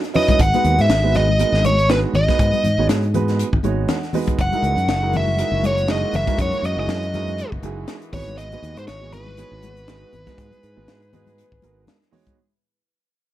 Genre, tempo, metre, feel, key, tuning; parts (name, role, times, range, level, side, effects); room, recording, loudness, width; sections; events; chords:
electric jazz fusion; 120 BPM; 4/4; swing 56% on 16ths; A4 = 440 Hz
crisp fusion drum kit; drums; 0.0-12.4 s; hi-hat, kick drum, snare drum; -23 LUFS; left 1 dB
warm grand piano; accompaniment; 0.1-12.4 s; F#3 to G#5; -26 LUFS; right 7 dB
biting lead guitar; melody; 0.2-11.8 s; B4 to F#5; -21 LUFS; equal; overdrive
congas; percussion; 0.2-12.4 s; -27 LUFS; left 6 dB
fingered electric bass; bass; 0.4-11.8 s; F#1 to G#2; -21 LUFS; equal
warm chamber string section; sustained chords; 4.4-12.4 s; E3 to G#4; -36 LUFS; left 3 dB
little or no reverb; -16 LUFS; side -13 dB against mid
0.0-12.4 A section
fade-out 0.0-12.4; grand piano fill 3.4-4.4
0.4 G#m7; 4.4 F#13; 8.1 G#m7